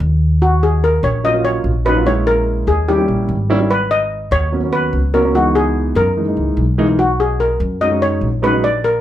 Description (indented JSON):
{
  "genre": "Afro-Cuban jazz",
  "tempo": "146 BPM",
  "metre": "4/4",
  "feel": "straight",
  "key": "Eb minor",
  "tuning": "A4 = 439 Hz",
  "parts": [
    { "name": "upright bass", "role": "bass", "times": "0.0-9.0 s", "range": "Ab1 to Gb2", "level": "-18 LUFS", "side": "equal", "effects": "none" },
    { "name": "steel pan", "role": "melody", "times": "0.4-9.0 s", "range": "Gb4 to Eb5", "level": "-16 LUFS", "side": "left 2 dB", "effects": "none" },
    { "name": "warm grand piano", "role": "accompaniment", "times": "1.2-8.6 s", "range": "Fb3 to F4", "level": "-18 LUFS", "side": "right 2 dB", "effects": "none" }
  ],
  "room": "moderate club reverb, RT60 0.6 s",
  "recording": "heard from further back in the room",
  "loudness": "-13 LUFS",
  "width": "side -12 dB against mid",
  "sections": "0.4-9.0 A section",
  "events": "none",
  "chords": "0.4 Ebm9; 2.1 Bbm7b5; 2.9 Eb7b9; 3.7 Abm11; 5.3 Dbm7; 6.2 Gb13; 7.0 B69"
}